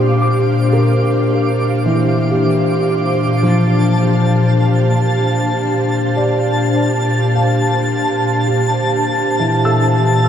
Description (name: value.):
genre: ambient.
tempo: 76 BPM.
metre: 4/4.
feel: straight.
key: Bb lydian.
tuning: A4 = 440 Hz.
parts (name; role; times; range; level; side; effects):
ethereal airy pad; sustained chords; 0.0-10.3 s; Bb2 to F5; -14 LUFS; left 1 dB; ensemble chorus, built-in reverb, shimmer reverb.
felt-muted upright piano; arpeggios; 0.0-10.3 s; E3 to E6; -20 LUFS; right 1 dB; tape echo, shimmer reverb.
twinkling granular texture; texture; 0.0-10.3 s; A5 to D6; -22 LUFS; equal; built-in reverb, shimmer reverb.
room: wet plate reverb, RT60 3.3 s.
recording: echo-heavy mix.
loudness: -13 LUFS.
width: side -9 dB against mid.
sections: 0.0-10.3 A section.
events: fade-out on felt piano 0.0-10.3.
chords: 0.0 Bb; 3.2 Bbmaj9.